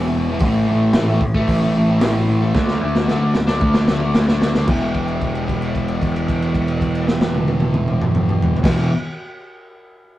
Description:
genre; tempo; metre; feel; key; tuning
garage rock duo or trio; 112 BPM; 4/4; straight; unclear; A4 = 440 Hz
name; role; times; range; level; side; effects
fuzz guitar; riff; 0.0-8.9 s; E2 to D4; -19 LUFS; equal; distortion
growling picked electric bass; bass; 0.0-8.9 s; E1 to D2; -22 LUFS; equal; overdrive
crunchy breakbeat drum kit; drums; 0.4-8.8 s; crash cymbal, hi-hat, kick drum, snare drum, toms; -20 LUFS; equal; none
room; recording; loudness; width
wet small room reverb, RT60 0.6 s; rough rehearsal-room recording; -15 LUFS; side -14 dB against mid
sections
0.0-4.7 A section; 4.7-9.0 B section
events
drum fill 2.6-4.7; held note 4.7-8.6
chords
0.4 A5; 2.6 D5; 4.7 E5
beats
| 0.42 0.96 1.49 2.02 | 2.56 3.09 3.62 4.16 | 4.69 5.22 5.76 6.29 | 6.83 7.36 7.90 8.43

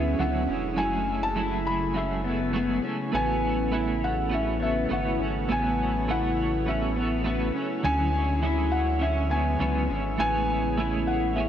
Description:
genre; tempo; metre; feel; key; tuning
dream pop; 102 BPM; 4/4; straight; A major; A4 = 440 Hz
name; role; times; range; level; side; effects
felt-muted upright piano; melody; 0.0-11.5 s; E5 to B5; -30 LUFS; equal; shimmer reverb, ping-pong delay
twelve-string electric guitar; accompaniment; 0.0-11.5 s; D3 to C#5; -32 LUFS; right 4 dB; tremolo, analog chorus, shimmer reverb
phased analog pad; sustained chords; 0.0-11.5 s; C#3 to E4; -31 LUFS; right 1 dB; phaser, chorus, shimmer reverb
electric guitar at the edge of break-up; arpeggios; 0.0-11.5 s; B3 to E4; -30 LUFS; left 3 dB; lush chorus, shimmer reverb, ping-pong delay
round analog bass; bass; 0.0-11.5 s; E1 to D2; -30 LUFS; equal; none
room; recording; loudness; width
wet plate reverb, RT60 3.2 s; worn, warbling old tape, cassette tape, warbly pitch drift; -24 LUFS; side -10 dB against mid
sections
0.0-11.5 A section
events
none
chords
0.0 Dmaj9#11; 0.8 F#m9; 3.1 A69; 7.8 Dmaj9#11; 10.2 Amaj9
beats
0.20 | 0.78 1.37 1.96 2.55 | 3.14 3.73 4.31 4.90 | 5.49 6.08 6.67 7.25 | 7.84 8.43 9.02 9.61 | 10.20 10.78 11.37

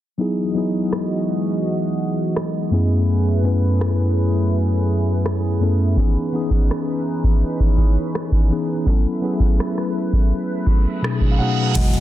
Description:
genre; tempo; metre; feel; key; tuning
contemporary R&B; 83 BPM; 4/4; straight; unclear; A4 = 441 Hz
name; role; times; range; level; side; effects
mellow tine electric piano; accompaniment; 0.2-12.0 s; F#2 to F#5; -20 LUFS; left 1 dB; slow stereo tremolo
chorused pulse-width pad; sustained chords; 0.3-12.0 s; E3 to D#5; -26 LUFS; right 2 dB; sidechain pumping
booming analog drum machine; drums; 0.9-12.0 s; crash cymbal, hi-hat, kick drum, rim click; -18 LUFS; equal; soft clipping on snare
reverse cymbal and downlifter; sound effects; 10.9-12.0 s; none; -29 LUFS; right 7 dB; none
sustaining fretless electric bass; bass; 11.8-12.0 s; E1; -22 LUFS; equal; wide subtle chorus
room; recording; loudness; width
little or no reverb; dense, heavily limited modern master, low-pass filter; -17 LUFS; side -13 dB against mid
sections
0.2-11.8 A section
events
filter sweep 0.2-11.8; reverse cymbal 10.9-11.8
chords
0.2 Emaj9; 2.7 F#m11; 6.0 C#m9; 8.9 B7sus4; 11.0 B13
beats
| 0.19 0.91 1.63 2.36 | 3.08 3.80 4.53 5.25 | 5.97 6.69 7.42 8.14 | 8.86 9.59 10.31 11.03 | 11.76

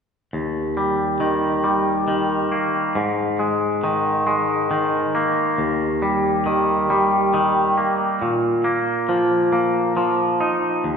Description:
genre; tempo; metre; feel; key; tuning
rock; 46 BPM (dotted quarters); 6/8; straight; Eb major; A4 = 440 Hz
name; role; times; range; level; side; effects
twangy electric guitar; solo; 0.3-11.0 s; Eb2 to Eb4; -18 LUFS; equal; none
room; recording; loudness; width
wet concert hall reverb, RT60 1.9 s; recorded in a church or concert hall; -18 LUFS; side -6 dB against mid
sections
0.3-10.8 A section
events
none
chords
0.3 Eb; 3.0 Absus2; 5.6 Eb; 8.2 Bbsus4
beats
| 0.34 1.65 | 2.96 4.28 | 5.59 6.90 | 8.22 9.53 | 10.84

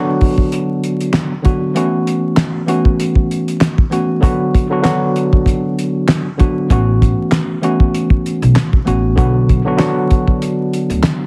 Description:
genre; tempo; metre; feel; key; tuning
hip hop, boom-bap hip-hop; 97 BPM; 4/4; swing 56% on 16ths; B minor; A4 = 440 Hz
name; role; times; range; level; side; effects
mellow tine electric piano; accompaniment; 0.0-11.2 s; D3 to F#4; -18 LUFS; equal; high-pass filter, low-pass filter
cloth-damped thuddy drum kit; drums; 0.2-11.2 s; handclaps, hi-hat, kick drum, snare drum; -17 LUFS; equal; none
upright bass; bass; 6.7-11.0 s; A1 to D2; -17 LUFS; equal; none
room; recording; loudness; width
studio reverb; heavily compressed radio sound, vinyl crackle; -15 LUFS; mono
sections
0.0-11.3 A section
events
break 0.0-1.8; kick muted 1.8-2.4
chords
0.0 Bm; 1.8 A6; 4.2 Bm; 6.7 A6; 9.2 Bm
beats
0.52 1.14 | 1.75 2.37 2.99 3.61 | 4.23 4.85 5.46 6.08 | 6.70 7.32 7.94 8.56 | 9.18 9.79 10.41 11.03

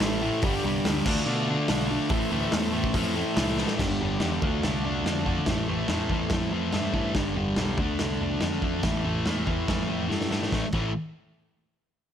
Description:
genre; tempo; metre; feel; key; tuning
garage rock duo or trio; 142 BPM; 4/4; straight; A minor; A4 = 440 Hz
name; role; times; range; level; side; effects
combo organ; sustained chords; 0.0-7.1 s; E4 to D5; -37 LUFS; equal; none
fuzz guitar; riff; 0.0-10.9 s; G2 to D4; -27 LUFS; equal; distortion
growling picked electric bass; bass; 0.0-10.9 s; G1 to B2; -32 LUFS; equal; overdrive
raw garage drum kit; drums; 0.0-10.8 s; crash cymbal, hi-hat, kick drum, snare drum, toms; -29 LUFS; equal; none
room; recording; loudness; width
light reverb, small room ambience; none; -24 LUFS; side -9 dB against mid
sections
0.0-3.8 A section; 3.8-10.5 B section; 10.5-12.1 C section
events
drum fill 3.6, 10.1-10.5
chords
0.4 G; 1.1 Dm; 2.1 Am; 3.8 G; 4.4 Dm; 5.5 Am; 7.1 G; 7.8 Dm; 8.8 A5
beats
0.02 | 0.44 0.85 1.27 1.69 | 2.11 2.52 2.94 3.36 | 3.78 4.20 4.62 5.04 | 5.46 5.88 6.30 6.73 | 7.15 7.57 7.99 8.41 | 8.84 9.26 9.68 10.10 | 10.52

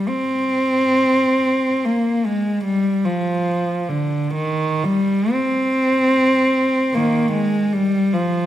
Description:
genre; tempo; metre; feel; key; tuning
classical, free, expressive piece for unaccompanied cello; 38-52 BPM (dotted quarters); 6/8; rubato; unclear; A4 = 440 Hz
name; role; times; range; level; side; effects
warm cello; solo; 0.0-8.5 s; D3 to C4; -16 LUFS; equal; none
room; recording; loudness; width
moderate scoring stage reverb, RT60 1.4 s; none; -16 LUFS; side -12 dB against mid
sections
0.0-8.5 A section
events
none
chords
none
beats
0.57 | 1.85 3.05 | 4.35 5.76 | 6.95 8.14

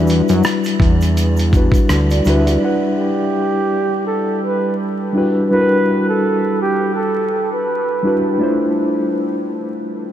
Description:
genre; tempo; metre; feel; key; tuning
lo-fi hip hop; 83 BPM; 4/4; swing 57% on 16ths; unclear; A4 = 439 Hz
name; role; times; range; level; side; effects
mellow reed electric piano; accompaniment; 0.0-10.1 s; G3 to F#5; -17 LUFS; left 1 dB; fast tremolo, low-pass filter
fat analog bass; bass; 0.0-2.6 s; D2 to F#2; -15 LUFS; equal; none
dusty soul sampler-style drum kit; drums; 0.1-2.6 s; hi-hat, kick drum, rim click; -19 LUFS; equal; none
egg shaker; percussion; 0.1-2.6 s; none; -41 LUFS; right 6 dB; none
vibraphone with soft mallets; second line; 2.1-2.8 s; F#4 to E5; -28 LUFS; right 4 dB; low-pass filter, tape echo
breathy flugelhorn; melody; 3.0-8.4 s; G4 to B4; -19 LUFS; right 2 dB; low-pass filter, tape echo
room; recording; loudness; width
wet huge ambient reverb, RT60 7.9 s; dreamy mix soaked in reverb, vinyl crackle; -14 LUFS; side -11 dB against mid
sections
0.0-2.6 A section; 2.6-10.1 B section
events
none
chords
0.0 Em9; 8.4 Dm9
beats
0.44 1.17 1.89 | 2.61 3.33 4.06 4.78 | 5.50 6.23 6.95 7.67 | 8.39 9.12 9.84

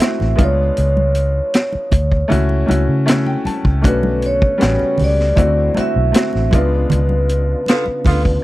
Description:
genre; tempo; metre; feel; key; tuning
lush 1970s-style soul; 78 BPM; 4/4; straight; unclear; A4 = 440 Hz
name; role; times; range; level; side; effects
vibraphone with soft mallets; melody; 0.0-8.4 s; B4 to E5; -20 LUFS; right 1 dB; none
clear baby grand piano; accompaniment; 0.0-8.4 s; G3 to A5; -21 LUFS; left 2 dB; none
vintage drum kit; drums; 0.0-8.4 s; hi-hat, kick drum, snare drum; -16 LUFS; equal; none
vintage muted fingered electric bass; bass; 0.2-8.4 s; A1 to C#3; -17 LUFS; equal; none
congas; percussion; 0.2-8.2 s; none; -24 LUFS; right 2 dB; none
tonewheel organ; sustained chords; 3.8-8.4 s; C#3 to F#4; -28 LUFS; right 1 dB; slow rotary speaker, chorus vibrato
warm horn section; stabs; 7.7-8.2 s; D3 to E#4; -22 LUFS; right 2 dB; none
room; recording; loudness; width
small room ambience; dry, close 1970s-style studio recording; -13 LUFS; side -17 dB against mid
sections
0.0-8.4 A section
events
grand piano fill 2.7-3.8; band accent 6.9-8.4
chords
0.4 C#7b9; 2.3 F#m7/C#; 3.8 Bm9; 4.6 A13; 5.4 D9; 6.5 C#7b9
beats
0.00 | 0.77 1.54 2.31 3.08 | 3.85 4.61 5.38 6.15 | 6.92 7.68

